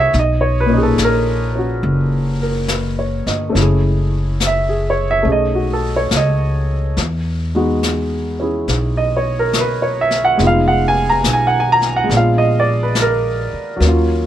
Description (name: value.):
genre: jazz ballad.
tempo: 70 BPM.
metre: 4/4.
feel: swing 68% on 8ths.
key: unclear.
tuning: A4 = 438 Hz.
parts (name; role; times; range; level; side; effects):
warm baby grand piano; accompaniment; 0.0-14.3 s; A#2 to Bb5; -16 LUFS; right 1 dB; none.
upright bass; bass; 0.0-14.3 s; F1 to E2; -18 LUFS; equal; none.
jazz brush drum kit; drums; 0.1-14.3 s; brushed snare drum, hi-hat, snare drum; -24 LUFS; left 4 dB; none.
room: little or no reverb.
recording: none.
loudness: -14 LUFS.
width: side -11 dB against mid.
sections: 0.0-14.3 A section.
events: none.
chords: 0.1 Bmaj13; 3.5 Gbm9; 5.3 B13; 7.0 Emaj9; 10.4 Fm7b5; 12.1 Bb7b9.